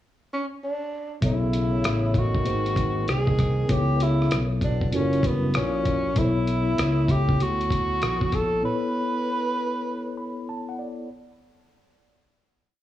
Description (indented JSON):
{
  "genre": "hip hop, jazz-hop",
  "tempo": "97 BPM",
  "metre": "4/4",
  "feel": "swing 65% on 16ths",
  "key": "unclear",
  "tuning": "A4 = 441 Hz",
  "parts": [
    { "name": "breathy tenor saxophone", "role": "melody", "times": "0.3-10.5 s", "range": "B3 to B4", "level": "-27 LUFS", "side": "equal", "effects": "none" },
    { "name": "mellow tine electric piano", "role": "accompaniment", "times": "1.2-11.1 s", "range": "A#3 to B5", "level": "-30 LUFS", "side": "left 2 dB", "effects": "medium stereo tremolo" },
    { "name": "mellow fretless electric bass", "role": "bass", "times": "1.2-8.6 s", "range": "F#1 to D2", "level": "-25 LUFS", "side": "equal", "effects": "none" },
    { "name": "dusty soul sampler-style drum kit", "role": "drums", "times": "1.2-8.5 s", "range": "hi-hat, kick drum, rim click", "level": "-27 LUFS", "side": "equal", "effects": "none" },
    { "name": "warm trombone", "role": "second line", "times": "1.3-6.1 s", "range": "G2 to E3", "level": "-33 LUFS", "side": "left 5 dB", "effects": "none" }
  ],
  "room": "digital ambience",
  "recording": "worn, warbling old tape, cassette tape, warbly pitch drift, small room ambience",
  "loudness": "-22 LUFS",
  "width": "side -13 dB against mid",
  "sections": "0.0-1.2 pickup bar; 1.2-11.1 A section",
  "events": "tine electric piano fill 9.9-11.1",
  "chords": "0.0 N.C.; 1.2 B9sus4; 2.5 G#7; 3.7 Bm11; 4.9 F#7; 6.2 Bm11"
}